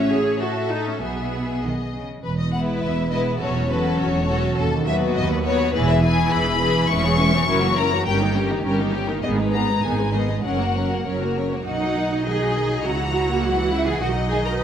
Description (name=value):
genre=quick classical-period movement for string orchestra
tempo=102 BPM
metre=2/4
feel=rubato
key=E major, B major from 6.9 s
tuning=A4 = 440 Hz
part: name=rich studio violin section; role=melody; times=0.0-14.6 s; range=A4 to C#6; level=-26 LUFS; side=left 5 dB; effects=none
part: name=rich studio violin section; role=second line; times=0.0-14.6 s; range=B3 to A#5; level=-27 LUFS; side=left 3 dB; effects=none
part: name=clear studio viola section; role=accompaniment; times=0.0-14.6 s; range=C#3 to G#4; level=-25 LUFS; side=equal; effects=none
part: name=clear studio double bass section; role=bass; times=0.0-14.6 s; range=E1 to D#2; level=-26 LUFS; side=right 2 dB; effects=none
part: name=rich studio cello section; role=bass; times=0.0-14.6 s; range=D#2 to B4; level=-25 LUFS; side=right 3 dB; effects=none
room=moderate scoring stage reverb, RT60 1.7 s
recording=none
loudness=-19 LUFS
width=side -8 dB against mid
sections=0.0-2.2 A section; 2.2-11.7 B section; 11.7-14.6 C section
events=none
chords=0.0 Amaj7#11; 1.0 E/B; 1.6 B; 2.2 E; 3.4 F#m7/E; 4.6 B/D#; 5.8 E; 6.9 C#m7/E; 7.5 F#7; 8.1 D#7/G; 9.2 G#m; 10.4 F#; 11.7 B; 12.8 F#7/C#; 14.0 B